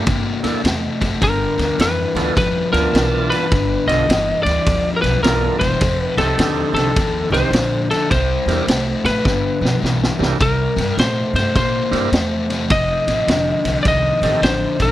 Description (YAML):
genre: electric blues shuffle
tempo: 104 BPM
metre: 4/4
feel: swing 64% on 8ths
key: unclear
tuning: A4 = 440 Hz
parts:
  - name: tonewheel organ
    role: accompaniment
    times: 0.0-14.4 s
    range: C3 to A5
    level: -23 LUFS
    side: right 7 dB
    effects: overdrive, slow rotary speaker
  - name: crunchy overdriven guitar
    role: riff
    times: 0.0-14.9 s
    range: F2 to Bb3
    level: -22 LUFS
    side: left 3 dB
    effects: none
  - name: upright bass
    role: bass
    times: 0.1-14.9 s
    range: E1 to Bb2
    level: -22 LUFS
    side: right 1 dB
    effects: none
  - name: vintage drum kit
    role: drums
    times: 0.1-14.9 s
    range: kick drum, ride cymbal, snare drum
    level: -21 LUFS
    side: equal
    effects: none
  - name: lightly driven lead guitar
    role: melody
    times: 1.2-14.9 s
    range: A4 to Eb5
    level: -20 LUFS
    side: left 1 dB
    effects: none
room: light reverb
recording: none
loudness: -15 LUFS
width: side -14 dB against mid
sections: 0.0-10.4 A section; 10.4-14.9 A section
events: drum fill 9.3-10.4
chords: 0.0 C9; 1.2 G9; 5.8 F9; 8.1 C9; 9.3 G7; 10.4 C9; 12.7 F9